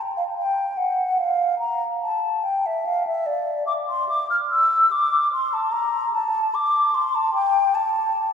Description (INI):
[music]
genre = classical, baroque-style fantasia for unaccompanied flute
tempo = 73 BPM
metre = 3/4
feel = rubato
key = D minor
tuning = A4 = 441 Hz
[part]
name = mellow hollow concert flute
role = solo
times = 0.2-8.3 s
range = D5 to F6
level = -19 LUFS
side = left 1 dB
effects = none
[sound]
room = wet church reverb, RT60 3.5 s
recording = small room ambience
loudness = -19 LUFS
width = side -7 dB against mid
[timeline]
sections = 0.0-8.3 A section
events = none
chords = none